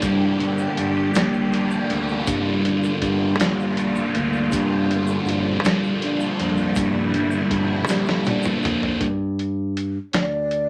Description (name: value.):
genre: psychedelic rock.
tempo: 53 BPM (dotted quarters).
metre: 6/8.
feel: straight.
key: G dorian.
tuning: A4 = 440 Hz.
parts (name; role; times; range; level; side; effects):
bright studio string section; sustained chords; 0.0-9.0 s; G3 to G4; -30 LUFS; equal; none.
thick fuzz guitar; riff; 0.0-9.0 s; G2 to D4; -25 LUFS; equal; distortion, phaser.
fingered electric bass; bass; 0.0-10.7 s; D2 to G3; -27 LUFS; equal; none.
dusty soul sampler-style drum kit; drums; 0.0-10.7 s; hi-hat, kick drum, snare drum, toms; -27 LUFS; equal; none.
egg shaker; percussion; 0.0-8.7 s; none; -48 LUFS; equal; none.
breathy mellow concert flute; melody; 10.1-10.7 s; D5; -25 LUFS; equal; none.
room: wet small room reverb, RT60 0.5 s.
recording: none.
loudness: -22 LUFS.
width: mono.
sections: 0.0-9.0 A section; 9.0-10.7 B section.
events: drum fill 7.9-9.0.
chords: 0.0 Gm; 4.5 Bb6; 9.0 G5.